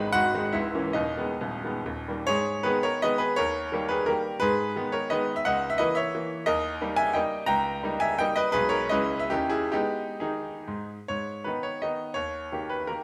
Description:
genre	classical, romantic triple-time dance for piano with dotted rhythms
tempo	122-188 BPM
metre	3/4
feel	rubato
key	G# minor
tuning	A4 = 439 Hz
part	bright grand piano	solo	0.0-13.0 s	C#1 to B5	-27 LUFS	equal	none
room	moderate recital hall reverb, RT60 1.6 s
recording	none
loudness	-27 LUFS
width	mono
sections	0.0-2.3 A section; 2.3-11.1 B section; 11.1-13.0 C section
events	none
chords	0.0 G#m; 0.5 A#dim/C#; 1.0 G#m/D#; 1.9 D#; 2.3 G#m; 3.4 D#7; 4.4 G#m; 5.5 A#dim/C#; 6.5 D#; 7.5 D#7/C#; 8.5 G#m/B; 8.9 C#m; 9.3 D#7b9; 9.7 G#m; 12.2 D#7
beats	0.15 0.55 | 0.96 1.41 1.86 | 2.28 2.66 3.03 | 3.38 3.72 4.08 | 4.41 4.75 5.11 | 5.45 5.79 6.14 | 6.46 6.80 7.15 | 7.49 7.84 8.21 | 8.54 8.91 9.30 | 9.73 10.21 10.68 | 11.09 11.46 11.83 | 12.17 12.52 12.88

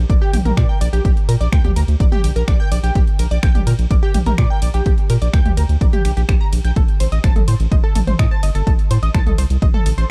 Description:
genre	melodic techno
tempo	126 BPM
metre	4/4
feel	straight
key	G minor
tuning	A4 = 443 Hz
part	round analog bass	bass	0.0-10.1 s	G1 to Bb2	-19 LUFS	equal	sidechain pumping
part	tight sequenced synth	arpeggios	0.1-10.0 s	G4 to Bb6	-28 LUFS	equal	chorus, sidechain pumping, digital delay
part	deep house drum kit	drums	0.1-10.1 s	finger snaps, hi-hat, ride cymbal, toms	-28 LUFS	equal	overdrive, small room ambience
part	electronic kick drum	drums	0.1-9.7 s	none	-18 LUFS	equal	overdrive, small room ambience
room	little or no reverb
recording	dark, warm production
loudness	-16 LUFS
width	mono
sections	0.0-10.1 A section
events	none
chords	0.0 Gm/Bb; 6.8 Adim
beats	0.10 0.57 | 1.05 1.52 2.00 2.48 | 2.95 3.43 3.91 4.38 | 4.86 5.33 5.81 6.29 | 6.76 7.24 7.71 8.19 | 8.67 9.14 9.62

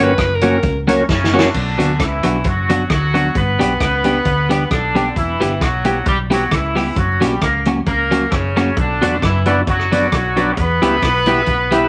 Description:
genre	ska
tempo	133 BPM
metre	4/4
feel	swing 55% on 8ths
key	B harmonic minor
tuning	A4 = 440 Hz
part	bright alto saxophone	melody	0.0-0.8 s	A#4 to B4	-21 LUFS	equal	none
part	clean electric guitar	accompaniment	0.0-11.8 s	F#3 to G4	-21 LUFS	equal	tremolo, dub echo
part	percussive tonewheel organ	stabs	0.0-1.5, 9.0-11.9 s	C#4 to E5	-22 LUFS	equal	overdrive, slow rotary speaker
part	hollow-body short-scale fingered electric bass	bass	0.0-11.9 s	E1 to E2	-23 LUFS	equal	none
part	vintage drum kit	drums	0.2-11.8 s	crash cymbal, hi-hat, kick drum, rim click, snare drum	-23 LUFS	equal	none
part	clear horn section	melody	1.1-11.9 s	C#3 to B4	-21 LUFS	equal	none
room	wet club reverb, RT60 0.8 s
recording	vinyl crackle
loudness	-16 LUFS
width	mono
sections	0.0-1.5 A section; 1.5-11.9 B section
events	alto saxophone solo 0.0-1.5; drum fill 1.1-1.5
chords	0.0 F#; 1.5 Bm; 3.4 G; 5.2 Em; 7.0 F#; 8.8 Bm; 10.6 Em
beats	0.18 0.63 1.09 | 1.54 1.99 2.45 2.90 | 3.35 3.80 4.26 4.71 | 5.16 5.61 6.06 6.52 | 6.97 7.42 7.87 8.32 | 8.77 9.22 9.67 10.12 | 10.57 11.02 11.47

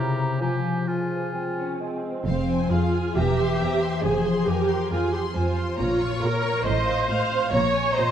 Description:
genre	classical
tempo	128-139 BPM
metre	4/4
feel	rubato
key	F minor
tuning	A4 = 440 Hz
part	bright large flute ensemble	second line	0.0-2.0 s	Ab5 to Bb5	-33 LUFS	right 2 dB	none
part	clear oboe	second line	0.0-1.8 s	F4 to G4	-34 LUFS	equal	none
part	dark clarinet	second line	0.0-2.0 s	E4 to F4	-34 LUFS	equal	none
part	mellow bassoon	accompaniment	0.0-2.3 s	C3 to C4	-33 LUFS	right 2 dB	none
part	concert harp	arpeggios	0.0-8.1 s	A2 to Eb5	-28 LUFS	left 5 dB	none
part	warm symphonic viola section	accompaniment	1.6-8.1 s	C4 to Db5	-24 LUFS	right 2 dB	none
part	warm studio violin section	melody	2.3-8.1 s	Eb5 to Db6	-35 LUFS	left 3 dB	none
part	warm symphonic violin section	second line	2.3-8.1 s	Ab4 to F5	-31 LUFS	left 2 dB	none
part	clear symphonic double bass section	bass	2.3-7.9 s	E1 to Bb1	-30 LUFS	right 3 dB	none
part	rich symphonic cello section	bass	2.3-8.1 s	E2 to Bb2	-28 LUFS	right 2 dB	none
room	moderate concert hall reverb, RT60 2.2 s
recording	dark, warm production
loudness	-21 LUFS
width	side -9 dB against mid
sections	0.0-2.3 A section; 2.3-8.1 B section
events	none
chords	0.4 Fm; 3.2 C7/E; 4.0 Fm; 5.8 Bbm; 6.7 F7/A; 7.5 Bbm7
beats	| 0.41 0.88 1.34 1.80 | 2.27 2.71 3.15 3.60 | 4.04 4.48 4.91 5.35 | 5.79 6.23 6.66 7.09 | 7.53 7.97

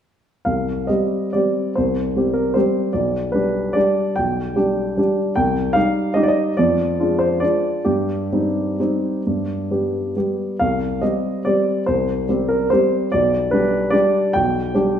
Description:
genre	classical, piano waltz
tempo	125-157 BPM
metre	3/4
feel	rubato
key	C minor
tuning	A4 = 437 Hz
part	warm grand piano	solo	0.4-15.0 s	B1 to G5	-17 LUFS	equal	none
room	moderate recital hall reverb, RT60 1.4 s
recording	minimal, uncompressed stereo recording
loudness	-17 LUFS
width	side -9 dB against mid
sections	0.5-15.0 A section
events	none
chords	0.5 Cm; 3.0 G/B; 5.4 Cm; 6.6 Ddim/F; 7.9 Cm/G; 9.2 G; 10.6 Cm; 13.1 G/B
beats	| 0.47 0.89 1.33 | 1.75 2.15 2.55 | 2.95 3.35 3.76 | 4.19 4.57 4.98 | 5.38 5.76 6.17 | 6.57 6.99 7.42 | 7.86 8.30 8.78 | 9.25 9.70 10.15 | 10.59 11.02 11.45 | 11.86 12.27 12.70 | 13.12 13.52 13.93 | 14.36 14.75

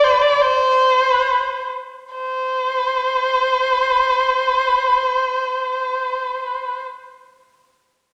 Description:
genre	chinese traditional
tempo	free time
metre	none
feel	none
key	unclear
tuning	A4 = 437 Hz
part	warm erhu	melody	0.0-6.8 s	C5 to D5	-18 LUFS	equal	none
room	wet recital hall reverb, RT60 1.6 s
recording	none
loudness	-18 LUFS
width	mono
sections	0.0-2.2 A section; 2.2-6.1 B section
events	slowing down 0.0-2.2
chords	none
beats	free time

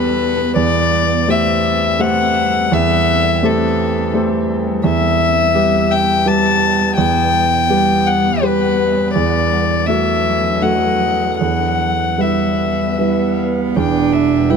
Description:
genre	neoclassical piano and strings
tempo	74-86 BPM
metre	3/4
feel	rubato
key	E minor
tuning	A4 = 441 Hz
part	warm violin	melody	0.0-14.6 s	A4 to A5	-16 LUFS	left 6 dB	tape echo
part	warm grand piano	accompaniment	0.0-14.6 s	E2 to C5	-16 LUFS	right 3 dB	none
part	granular cloud pad	sustained chords	0.0-14.6 s	F#3 to B4	-24 LUFS	equal	built-in reverb
part	warm cello	second line	13.0-14.6 s	B3 to E4	-17 LUFS	right 8 dB	none
part	dark double bass	bass	13.8-14.6 s	E1	-23 LUFS	left 2 dB	none
room	light reverb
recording	close, detailed microphones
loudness	-13 LUFS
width	side -6 dB against mid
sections	0.0-13.8 A section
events	none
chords	0.0 Em; 0.6 Am7/E; 4.8 Em; 9.1 D/E; 11.4 Em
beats	| 0.57 1.29 2.00 | 2.72 3.43 4.14 | 4.84 5.54 6.25 | 6.96 7.68 8.41 | 9.14 9.86 10.61 | 11.39 12.19 12.97 | 13.76 14.50

